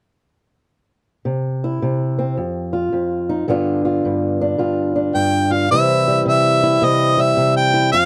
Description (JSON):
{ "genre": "acoustic country blues, solo or duo", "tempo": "108 BPM", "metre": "4/4", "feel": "swing 64% on 8ths", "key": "unclear", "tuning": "A4 = 441 Hz", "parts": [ { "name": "fingerpicked old ladder-braced acoustic guitar", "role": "accompaniment", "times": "1.3-8.1 s", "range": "F2 to F4", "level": "-20 LUFS", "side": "equal", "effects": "none" }, { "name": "warm harmonica", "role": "melody", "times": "5.1-8.1 s", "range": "Eb5 to G5", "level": "-18 LUFS", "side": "equal", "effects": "none" } ], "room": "light reverb", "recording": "dry, close 1970s-style studio recording", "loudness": "-18 LUFS", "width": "mono", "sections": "1.3-5.7 A section; 5.7-8.1 B section", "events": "none", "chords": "1.3 C; 2.4 Ebsus2/F; 3.5 G7; 5.7 C" }